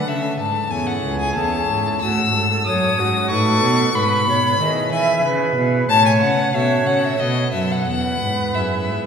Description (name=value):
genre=classical, baroque-style sonata movement with continuo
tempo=92 BPM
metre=3/4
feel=straight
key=E major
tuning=A4 = 442 Hz
part: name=rich violin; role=melody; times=0.0-9.1 s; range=D#5 to E6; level=-20 LUFS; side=left 4 dB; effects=none
part: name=concert flute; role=second line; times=0.0-9.1 s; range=F#4 to E5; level=-22 LUFS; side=right 2 dB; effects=none
part: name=pipe organ, sparkling flutes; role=accompaniment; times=0.0-9.1 s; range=C#2 to B4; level=-26 LUFS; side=equal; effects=none
part: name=warm cello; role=bass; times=0.0-9.1 s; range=C#2 to E3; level=-22 LUFS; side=right 1 dB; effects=none
room=wet church reverb, RT60 3.6 s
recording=recorded in a church or concert hall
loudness=-16 LUFS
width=side -7 dB against mid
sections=0.0-9.1 A section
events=none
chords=0.1 A; 2.0 F#m7; 3.3 B7/A; 4.0 E/G#; 5.9 F#m/A; 7.2 B7; 7.9 E